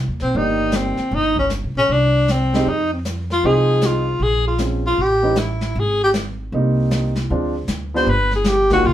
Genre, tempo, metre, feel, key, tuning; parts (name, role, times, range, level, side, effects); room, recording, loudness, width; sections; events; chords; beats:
jazz, small-group swing and bop; 155 BPM; 4/4; swing 65% on 8ths; C minor; A4 = 439 Hz
upright bass; bass; 0.0-8.9 s; G1 to F2; -21 LUFS; equal
breathy tenor saxophone; melody; 0.2-8.9 s; C4 to C5; -18 LUFS; left 1 dB
jazz brush drum kit; drums; 0.2-8.9 s; brushed snare drum, hi-hat, kick drum, snare drum; -25 LUFS; left 1 dB
dark grand piano; accompaniment; 0.3-8.8 s; Eb3 to D5; -22 LUFS; right 2 dB
wet studio ambience, RT60 0.5 s; band playing live in one room; -16 LUFS; side -12 dB against mid
0.0-8.9 A section
0.0 Cm7; 1.1 Gdim; 1.9 C5; 2.7 Fm7; 4.2 Bbm7; 5.0 A7#11; 5.8 Abmaj7; 7.3 Dm7b5; 8.1 G7alt
0.34 0.73 | 1.12 1.50 1.89 2.28 | 2.67 3.05 3.44 3.83 | 4.21 4.60 4.99 5.37 | 5.76 6.14 6.53 6.92 | 7.30 7.69 8.08 8.46 | 8.85